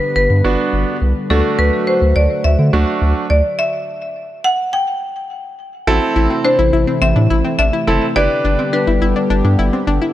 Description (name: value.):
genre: synth-pop.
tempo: 105 BPM.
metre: 4/4.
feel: straight.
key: A dorian.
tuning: A4 = 439 Hz.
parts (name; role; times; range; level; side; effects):
marimba with medium hard mallets; melody; 0.0-9.8 s; A4 to G5; -18 LUFS; left 1 dB; tape echo.
warm analog pad; sustained chords; 0.0-10.1 s; C3 to B4; -21 LUFS; left 1 dB; chorus.
round analog bass; bass; 0.2-10.0 s; F#1 to D3; -15 LUFS; equal; none.
clear concert grand piano; accompaniment; 0.4-8.8 s; A3 to B4; -19 LUFS; right 3 dB; none.
analog pluck; arpeggios; 5.9-10.1 s; C4 to F#4; -20 LUFS; left 4 dB; chorus, tape echo.
room: light reverb, small room ambience.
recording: none.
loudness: -13 LUFS.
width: side -13 dB against mid.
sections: 0.0-5.9 A section; 5.9-10.1 B section.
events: stop 3.6-5.9.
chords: 0.0 G; 1.3 D; 3.6 N.C.; 5.9 Am; 8.2 G.